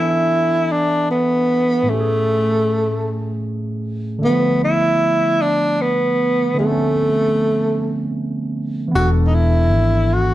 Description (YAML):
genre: slow six-eight R&B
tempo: 51 BPM (dotted quarters)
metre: 6/8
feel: straight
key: unclear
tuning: A4 = 441 Hz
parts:
  - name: breathy tenor saxophone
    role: melody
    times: 0.0-10.3 s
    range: A3 to F#4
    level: -17 LUFS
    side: equal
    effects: slapback echo, plate reverb
  - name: barky tine electric piano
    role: accompaniment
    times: 0.0-10.3 s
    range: A2 to G#5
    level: -21 LUFS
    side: right 1 dB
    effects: plate reverb
  - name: woody fretless electric bass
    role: bass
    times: 9.0-10.3 s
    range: E1 to G#1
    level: -16 LUFS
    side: left 1 dB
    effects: none
room: moderate studio reverb, RT60 0.5 s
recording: dark, warm production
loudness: -15 LUFS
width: side -14 dB against mid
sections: 0.0-10.3 A section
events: none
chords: 0.0 E7sus4; 1.9 Amaj7; 4.2 Dm6; 8.9 E7sus4